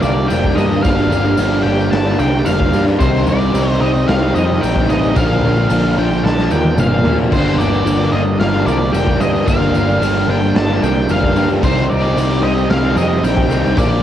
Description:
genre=rock, shoegaze and dream pop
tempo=111 BPM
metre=4/4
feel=straight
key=G minor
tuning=A4 = 440 Hz
part: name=octave-fuzz lead guitar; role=melody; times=0.0-14.0 s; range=C5 to A5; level=-22 LUFS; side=equal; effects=distortion, cassette tape, analog delay
part: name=granular cloud pad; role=sustained chords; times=0.1-14.0 s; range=D4 to Bb5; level=-26 LUFS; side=equal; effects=none
part: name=twangy electric guitar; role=arpeggios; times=0.0-14.0 s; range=Eb3 to G4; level=-29 LUFS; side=left 8 dB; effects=none
part: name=biting overdriven guitar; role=riff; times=0.0-14.0 s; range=G2 to Eb4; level=-24 LUFS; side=equal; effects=none
part: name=overdriven electric guitar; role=riff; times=0.0-14.0 s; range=G2 to Eb4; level=-19 LUFS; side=right 7 dB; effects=reverse reverb, cassette tape
part: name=overdriven semi-hollow guitar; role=riff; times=0.0-14.0 s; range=G2 to Eb4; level=-21 LUFS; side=left 9 dB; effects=analog chorus, cassette tape
part: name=fuzz picked electric bass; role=bass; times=0.0-14.0 s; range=F1 to Bb2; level=-18 LUFS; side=equal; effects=overdrive, tube saturation
part: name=tambourine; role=percussion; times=0.0-13.9 s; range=none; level=-40 LUFS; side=right 10 dB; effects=none
part: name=raw garage drum kit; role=drums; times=0.3-13.9 s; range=crash cymbal, hi-hat, kick drum, snare drum, toms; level=-20 LUFS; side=equal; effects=cassette tape
room=little or no reverb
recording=home recording on cassette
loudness=-12 LUFS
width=side -10 dB against mid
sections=0.0-14.0 A section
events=drum fill 6.2-7.3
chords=0.0 Gm7; 3.0 Cm7; 5.2 Bbmaj7; 7.3 Gm7; 11.6 Cm7

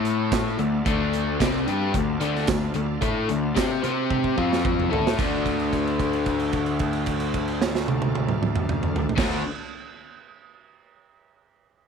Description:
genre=classic rock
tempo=111 BPM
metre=4/4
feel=straight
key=D minor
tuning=A4 = 440 Hz
part: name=bright tonewheel organ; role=sustained chords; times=0.0-9.4 s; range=C4 to A5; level=-37 LUFS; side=right 1 dB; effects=slow rotary speaker, overdrive, chorus vibrato
part: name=overdriven electric guitar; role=riff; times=0.0-9.4 s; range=C3 to C5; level=-27 LUFS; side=left 10 dB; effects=none
part: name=overdriven electric guitar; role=riff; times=0.0-9.4 s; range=C3 to C5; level=-28 LUFS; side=right 1 dB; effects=none
part: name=fuzz picked electric bass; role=bass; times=0.0-9.4 s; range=C2 to C3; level=-30 LUFS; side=right 1 dB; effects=overdrive
part: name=big rock drum kit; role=drums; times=0.0-9.3 s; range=crash cymbal, hi-hat, kick drum, snare drum, tambourine, toms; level=-26 LUFS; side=right 4 dB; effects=none
room=light reverb, studio reverb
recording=1960s-style stereo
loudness=-21 LUFS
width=side -6 dB against mid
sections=0.0-5.2 A section; 5.2-9.5 B section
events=drum fill 4.1-5.2; held note 5.2-9.2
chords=0.0 A5; 0.6 Dm; 3.8 C5; 4.4 F5; 4.9 A5; 5.2 Dm

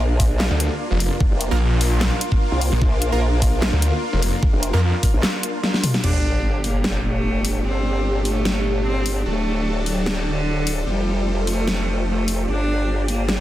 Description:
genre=heavy wobble dubstep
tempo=149 BPM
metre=4/4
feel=half-time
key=G minor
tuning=A4 = 445 Hz
part: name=supersaw chords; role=sustained chords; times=0.0-13.4 s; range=Bb2 to A5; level=-29 LUFS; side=right 1 dB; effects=phaser, vintage 12-bit sampler grit, sidechain pumping
part: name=formant-sweep wobble bass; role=bass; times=0.0-13.4 s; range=D1 to C2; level=-22 LUFS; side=equal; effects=chorus, overdrive
part: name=granular cloud pad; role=texture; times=0.0-13.4 s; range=D4 to C6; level=-30 LUFS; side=left 1 dB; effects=built-in reverb, sidechain pumping
part: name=dubstep drum kit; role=drums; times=0.2-13.4 s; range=crash cymbal, handclaps, hi-hat, snare drum, toms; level=-24 LUFS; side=left 1 dB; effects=none
part: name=electronic kick drum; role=drums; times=0.2-5.1 s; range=none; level=-18 LUFS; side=equal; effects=none
part: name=snarling distorted saw bass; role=bass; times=0.5-4.9 s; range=F1 to F2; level=-18 LUFS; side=equal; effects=distortion, overdrive
part: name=supersaw stab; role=stabs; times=1.5-4.8 s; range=Bb3 to Bb4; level=-31 LUFS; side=right 3 dB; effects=digital delay
part: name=clear cello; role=melody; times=6.0-13.4 s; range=D3 to D4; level=-25 LUFS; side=equal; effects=none
part: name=sub drop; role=sound effects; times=6.0-7.6 s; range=none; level=-24 LUFS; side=equal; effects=none
room=light reverb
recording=dense, heavily limited modern master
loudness=-18 LUFS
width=side -14 dB against mid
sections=0.0-6.0 A section; 6.0-13.4 B section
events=drop 0.0-6.0; break 5.2-6.0; drum fill 5.6-6.0; band accent 5.9; impact 6.0-7.6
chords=0.0 Gmadd9; 6.0 Gm; 9.3 D; 10.9 Fadd9; 12.5 G5

